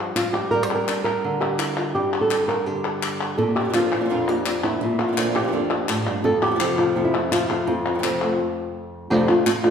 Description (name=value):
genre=flamenco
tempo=168 BPM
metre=4/4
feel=straight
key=F major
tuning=A4 = 441 Hz
part: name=flamenco guitar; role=melody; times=0.0-9.7 s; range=F2 to C5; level=-21 LUFS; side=equal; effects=none
part: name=palmas hand claps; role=percussion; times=0.2-9.7 s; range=none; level=-27 LUFS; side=left 3 dB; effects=none
part: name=flamenco guitar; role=stabs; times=3.4-8.4 s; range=F2 to F4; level=-27 LUFS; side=right 4 dB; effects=none
room=wet recital hall reverb, RT60 1.6 s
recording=recorded in a church or concert hall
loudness=-19 LUFS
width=side -7 dB against mid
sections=0.0-9.1 A section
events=stop 8.4-9.1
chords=0.0 Csus4 (rootless); 0.5 Gm; 3.4 Bb; 6.2 F; 9.1 F6